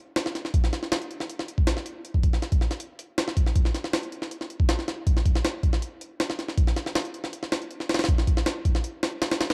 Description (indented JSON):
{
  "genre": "drum and bass",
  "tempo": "159 BPM",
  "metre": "4/4",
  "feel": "straight",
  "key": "none",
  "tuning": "none",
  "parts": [
    { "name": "jungle sampler-style drum kit", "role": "drums", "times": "0.2-9.5 s", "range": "hi-hat, kick drum, snare drum", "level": "-26 LUFS", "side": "equal", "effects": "small room ambience" }
  ],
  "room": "light reverb",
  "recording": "dark, warm production",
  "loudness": "-26 LUFS",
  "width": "mono",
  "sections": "0.0-9.5 A section",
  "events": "none",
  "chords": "none",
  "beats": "0.16 | 0.54 0.92 1.29 1.67 | 2.05 2.42 2.80 3.18 | 3.56 3.93 4.31 4.69 | 5.07 5.44 5.82 6.20 | 6.58 6.95 7.33 7.71 | 8.09 8.46 8.84 9.22"
}